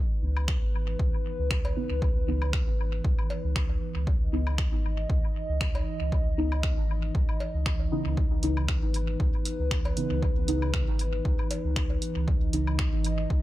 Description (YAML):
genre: dub techno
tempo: 117 BPM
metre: 4/4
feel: swing 55% on 16ths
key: C# minor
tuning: A4 = 442 Hz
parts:
  - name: dark analog pad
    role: sustained chords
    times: 0.0-13.4 s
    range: E3 to D#5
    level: -34 LUFS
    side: right 1 dB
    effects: chorus, sidechain pumping
  - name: deep mellow chord stab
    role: stabs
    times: 0.2-12.7 s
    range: C#3 to D#4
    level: -33 LUFS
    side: equal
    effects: chorus, phaser, sidechain pumping, dub echo
  - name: pure sine sub bass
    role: bass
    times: 0.2-13.4 s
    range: G#1 to C#2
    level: -29 LUFS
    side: equal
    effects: sidechain pumping
  - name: woodblock and cowbell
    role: percussion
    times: 0.4-12.8 s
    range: none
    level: -42 LUFS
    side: left 2 dB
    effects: sidechain pumping on perc, dub echo
  - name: electronic kick drum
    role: drums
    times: 0.5-13.4 s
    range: none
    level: -28 LUFS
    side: equal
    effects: none
  - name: punchy analog drum machine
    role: drums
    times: 0.5-13.2 s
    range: finger snaps, hi-hat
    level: -35 LUFS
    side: equal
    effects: dub echo
room: little or no reverb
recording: echo-heavy mix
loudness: -25 LUFS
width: side -16 dB against mid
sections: 0.0-13.4 A section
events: none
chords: 0.0 C#m9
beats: 0.48 0.99 1.51 | 2.02 2.53 3.04 3.56 | 4.07 4.58 5.10 5.61 | 6.12 6.63 7.15 7.66 | 8.17 8.69 9.20 9.71 | 10.22 10.74 11.25 11.76 | 12.28 12.79 13.30